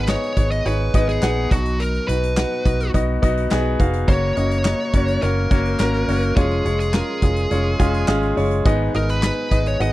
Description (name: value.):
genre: piano-driven pop.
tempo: 105 BPM.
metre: 4/4.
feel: straight.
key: F# major.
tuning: A4 = 442 Hz.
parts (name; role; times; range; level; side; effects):
fuzz lead guitar; melody; 0.0-9.9 s; F#4 to D#5; -25 LUFS; equal; distortion, slapback echo.
clear baby grand piano; accompaniment; 0.0-9.9 s; G#2 to F#5; -22 LUFS; left 1 dB; none.
vintage muted fingered electric bass; bass; 0.0-9.9 s; E#1 to B1; -22 LUFS; equal; none.
huge arena drum kit; drums; 0.1-9.9 s; handclaps, hi-hat, kick drum, snare drum; -20 LUFS; equal; none.
room: studio reverb.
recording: dry, close 1970s-style studio recording.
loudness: -17 LUFS.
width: side -16 dB against mid.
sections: 0.0-9.9 A section.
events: none.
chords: 0.0 G#m; 1.5 B; 4.1 F#; 6.4 C#/E#; 8.7 G#m.